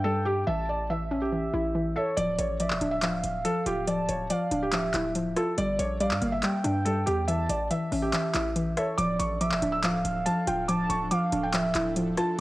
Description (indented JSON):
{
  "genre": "hip hop, trap",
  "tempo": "141 BPM",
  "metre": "4/4",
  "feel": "half-time",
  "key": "D harmonic minor",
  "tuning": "A4 = 440 Hz",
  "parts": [
    { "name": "felt-muted upright piano", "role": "melody", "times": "0.0-12.4 s", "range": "G4 to E6", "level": "-31 LUFS", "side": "right 1 dB", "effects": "low-pass filter" },
    { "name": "gliding portamento lead", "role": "second line", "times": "0.0-11.9 s", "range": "C#5 to A5", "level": "-32 LUFS", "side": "right 1 dB", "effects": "chorus, analog delay" },
    { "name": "hollow square pluck", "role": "accompaniment", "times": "0.0-12.4 s", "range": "E3 to E5", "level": "-29 LUFS", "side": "left 1 dB", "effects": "chorus, low-pass filter" },
    { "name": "hard-hitting 808-style bass", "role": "bass", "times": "0.0-12.2 s", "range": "D1 to G2", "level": "-34 LUFS", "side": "equal", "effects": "none" },
    { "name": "booming analog drum machine", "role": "drums", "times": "2.2-12.3 s", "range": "handclaps, hi-hat, rim click", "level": "-32 LUFS", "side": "equal", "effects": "cassette tape" },
    { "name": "airy breathy pad", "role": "sustained chords", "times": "9.0-12.4 s", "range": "F3 to A4", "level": "-39 LUFS", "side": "right 2 dB", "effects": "chorus" }
  ],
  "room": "light reverb, digital ambience",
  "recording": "home recording on cassette",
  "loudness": "-25 LUFS",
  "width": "side -18 dB against mid",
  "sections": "0.0-9.0 A section; 9.0-12.4 B section",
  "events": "none",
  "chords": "0.5 A; 2.2 Dmadd9; 5.6 Gm; 7.3 A; 9.0 Dmadd9"
}